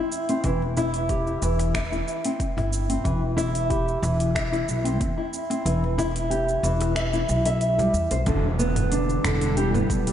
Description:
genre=organic downtempo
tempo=92 BPM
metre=4/4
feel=straight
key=unclear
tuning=A4 = 439 Hz
part: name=nylon-string guitar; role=arpeggios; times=0.0-10.1 s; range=D3 to E5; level=-24 LUFS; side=equal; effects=tape echo, slapback echo
part: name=afro-pop drum kit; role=drums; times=0.1-10.1 s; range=finger snaps, hi-hat, shaker, toms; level=-32 LUFS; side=right 1 dB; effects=none
part: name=cajon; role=percussion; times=0.3-7.9 s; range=none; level=-37 LUFS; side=left 2 dB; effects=none
part: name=upright bass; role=bass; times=0.4-10.1 s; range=E1 to E2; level=-26 LUFS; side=equal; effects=sidechain pumping
part: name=electronic kick drum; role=drums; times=0.4-10.0 s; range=none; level=-29 LUFS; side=equal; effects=none
part: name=ethereal airy pad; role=sustained chords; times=8.8-10.1 s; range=D3 to E4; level=-29 LUFS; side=left 1 dB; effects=ensemble chorus, built-in reverb, sidechain pumping
part: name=impact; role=sound effects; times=8.3-10.1 s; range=none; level=-32 LUFS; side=equal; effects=none
room=wet lush hall reverb, RT60 2.7 s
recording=big arena sound, nothing above 10.9 kHz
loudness=-21 LUFS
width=side -10 dB against mid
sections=0.0-8.3 A section; 8.3-10.1 B section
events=kick drops out 5.7-8.3; impact 8.3-10.1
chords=0.0 C/E (rootless); 8.3 Em7

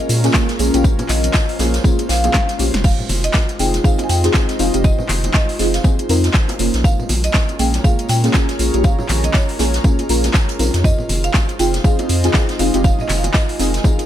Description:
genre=deep house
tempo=120 BPM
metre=4/4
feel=swing 59% on 16ths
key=F minor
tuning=A4 = 440 Hz
part: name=vibraphone with soft mallets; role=melody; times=0.0-2.5 s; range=Eb5 to F5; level=-25 LUFS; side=left 3 dB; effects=digital delay
part: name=airy breathy pad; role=sustained chords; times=0.0-14.1 s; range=Ab3 to C5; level=-28 LUFS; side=right 2 dB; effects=chorus, sidechain pumping
part: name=deep mellow chord stab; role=stabs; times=0.0-14.0 s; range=Bb3 to Bb4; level=-21 LUFS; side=equal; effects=chorus, phaser, sidechain pumping, tape echo
part: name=deep house drum kit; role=drums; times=0.0-14.1 s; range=crash cymbal, handclaps, hi-hat, snare drum, tambourine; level=-23 LUFS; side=equal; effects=overdrive
part: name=warbly tape-like pad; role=texture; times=0.0-14.1 s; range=Db4 to Bb5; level=-28 LUFS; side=left 1 dB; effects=chorus, built-in reverb, sidechain pumping
part: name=round analog bass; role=bass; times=0.1-13.8 s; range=F1 to Bb2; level=-19 LUFS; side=equal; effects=sidechain pumping
part: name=unplugged drum kit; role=drums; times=0.1-14.0 s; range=hi-hat, snare drum, tambourine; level=-30 LUFS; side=equal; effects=high-pass filter on hats, high-pass filter on snare, high-pass filter on perc, high-pass filter on room
part: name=bongos and congas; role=percussion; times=0.1-14.0 s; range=none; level=-30 LUFS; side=left 2 dB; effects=none
part: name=electronic kick drum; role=drums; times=0.3-14.0 s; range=none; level=-15 LUFS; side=equal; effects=overdrive
part: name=marimba with medium hard mallets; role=melody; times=2.8-14.1 s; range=Db5 to Ab5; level=-26 LUFS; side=right 1 dB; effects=ping-pong delay
room=small room ambience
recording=none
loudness=-14 LUFS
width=side -11 dB against mid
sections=0.0-14.1 A section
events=drum fill 2.3-2.8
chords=0.0 Fm7; 6.8 Bbm7; 10.8 Fm7

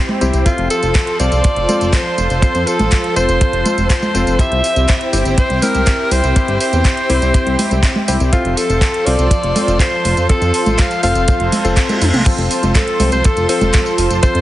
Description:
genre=italo disco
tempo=122 BPM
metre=4/4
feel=straight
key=F major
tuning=A4 = 440 Hz
part: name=bright alto saxophone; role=melody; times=0.0-14.4 s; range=F4 to F5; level=-18 LUFS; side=equal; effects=tape echo
part: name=lush unison pad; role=sustained chords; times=0.0-14.4 s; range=F3 to C5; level=-21 LUFS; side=equal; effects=chorus, vintage 12-bit sampler grit
part: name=clear electric grand piano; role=stabs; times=0.0-14.4 s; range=C4 to C5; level=-22 LUFS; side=left 4 dB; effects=none
part: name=house drum kit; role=drums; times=0.1-14.4 s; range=congas, crash cymbal, handclaps, hi-hat, tambourine, toms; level=-20 LUFS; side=right 1 dB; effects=small room ambience
part: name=chorused synth bass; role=bass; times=0.2-14.4 s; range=F1 to F2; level=-17 LUFS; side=equal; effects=none
part: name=kick drum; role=drums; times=0.5-14.3 s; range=none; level=-13 LUFS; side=equal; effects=small room ambience
part: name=reverse cymbal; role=sound effects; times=11.5-12.3 s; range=none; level=-24 LUFS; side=right 1 dB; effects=none
room=light reverb, small room reverb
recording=heavily compressed radio sound, multiband compression, nothing above 10.7 kHz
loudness=-12 LUFS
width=side -14 dB against mid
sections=0.0-12.3 A section; 12.3-14.4 B section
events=reverse cymbal 11.5-12.3; drum fill 11.9-12.3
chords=0.5 F; 4.4 C; 8.3 F

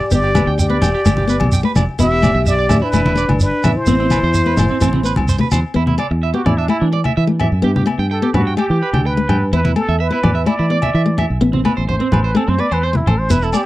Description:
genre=highlife guitar band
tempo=127 BPM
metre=4/4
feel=straight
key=E minor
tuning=A4 = 440 Hz
part: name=trumpet with plunger mute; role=melody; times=0.0-13.7 s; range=D4 to E5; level=-20 LUFS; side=equal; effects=none
part: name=breathy alto saxophone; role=second line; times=0.0-5.3 s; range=D4 to G4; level=-23 LUFS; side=left 4 dB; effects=none
part: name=picked steel-string acoustic guitar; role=accompaniment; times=0.1-13.7 s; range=E3 to B3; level=-20 LUFS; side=left 3 dB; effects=none
part: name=electric guitar at the edge of break-up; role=arpeggios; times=0.1-13.6 s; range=C4 to G5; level=-23 LUFS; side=right 7 dB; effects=tape echo
part: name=fingered electric bass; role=bass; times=0.1-13.5 s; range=E1 to E3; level=-18 LUFS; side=equal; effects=none
part: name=shekere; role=percussion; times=0.1-5.6, 13.3-13.6 s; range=none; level=-19 LUFS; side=right 1 dB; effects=none
part: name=agogo bells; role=percussion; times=0.3-13.7 s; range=none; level=-28 LUFS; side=left 7 dB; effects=none
part: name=congas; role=percussion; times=0.4-13.2 s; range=none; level=-19 LUFS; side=left 1 dB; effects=none
room=little or no reverb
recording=dry, close 1970s-style studio recording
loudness=-13 LUFS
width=side -16 dB against mid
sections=0.0-5.8 A section; 5.8-13.7 B section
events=muted trumpet solo 5.8-13.7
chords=0.1 Gadd9; 2.0 Em7; 3.9 Amadd9; 5.8 E7(no3); 7.6 Gadd9; 9.5 E5; 11.4 Amadd9

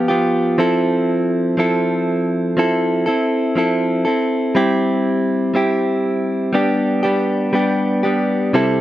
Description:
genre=pop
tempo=60 BPM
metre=4/4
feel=straight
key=unclear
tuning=A4 = 440 Hz
part: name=direct-recorded clean electric guitar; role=solo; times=0.0-8.8 s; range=C3 to A4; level=-15 LUFS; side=equal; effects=none
room=moderate studio ambience, RT60 0.5 s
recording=rough home demo mix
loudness=-15 LUFS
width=side -14 dB against mid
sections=0.0-8.8 A section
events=none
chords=0.0 G7; 0.6 Fmaj7; 4.6 C/G; 6.5 G

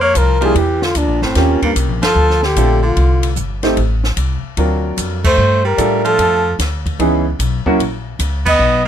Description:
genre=jazz, small-group swing and bop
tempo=149 BPM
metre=4/4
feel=swing 66% on 8ths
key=unclear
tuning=A4 = 440 Hz
part: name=mellow flugelhorn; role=melody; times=0.0-8.8 s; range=Bb3 to Eb5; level=-16 LUFS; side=left 1 dB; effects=none
part: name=bright baritone saxophone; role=second line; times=0.0-8.9 s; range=G2 to Cb4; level=-19 LUFS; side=right 3 dB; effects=none
part: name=upright bass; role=bass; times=0.0-8.9 s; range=G1 to A2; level=-17 LUFS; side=equal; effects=none
part: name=compact cocktail drum kit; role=drums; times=0.2-8.5 s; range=crash cymbal, hi-hat, kick drum, ride cymbal, snare drum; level=-22 LUFS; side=equal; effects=none
part: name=clear baby grand piano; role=accompaniment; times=0.4-7.8 s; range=Fb3 to C5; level=-17 LUFS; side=right 2 dB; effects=none
room=little or no reverb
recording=close, detailed microphones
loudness=-13 LUFS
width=side -9 dB against mid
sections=0.0-8.9 A section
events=band accent 2.0, 5.2, 8.4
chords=0.0 Dbmaj7; 0.6 Em7b5; 1.4 Eb13; 2.2 Dm7; 3.8 Am; 4.6 D7alt; 5.4 Gm9; 7.0 Dbm9; 7.8 Bbm

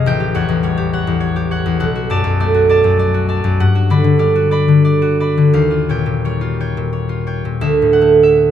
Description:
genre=classical, solo harp piece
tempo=85-103 BPM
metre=3/4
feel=rubato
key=D major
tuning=A4 = 444 Hz
part: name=concert harp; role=solo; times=0.0-8.5 s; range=A1 to B5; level=-12 LUFS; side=equal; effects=none
room=light reverb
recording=close, detailed microphones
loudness=-12 LUFS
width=side -10 dB against mid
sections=0.0-7.6 A section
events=none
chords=0.0 A6; 1.8 Bm7; 3.6 Gmaj7; 5.5 Eb9; 7.6 Dadd9

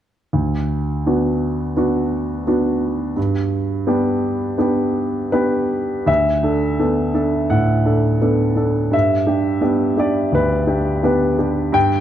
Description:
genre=classical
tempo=85 BPM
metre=4/4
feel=rubato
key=D major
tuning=A4 = 440 Hz
part: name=clear baby grand piano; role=accompaniment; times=0.3-12.0 s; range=D2 to G5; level=-16 LUFS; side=equal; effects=none
room=moderate recital hall reverb, RT60 1.4 s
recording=dark, warm production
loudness=-16 LUFS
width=side -10 dB against mid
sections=0.4-6.1 A section; 6.1-12.0 B section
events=none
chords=0.4 D6; 3.2 G; 6.1 D6; 8.9 G

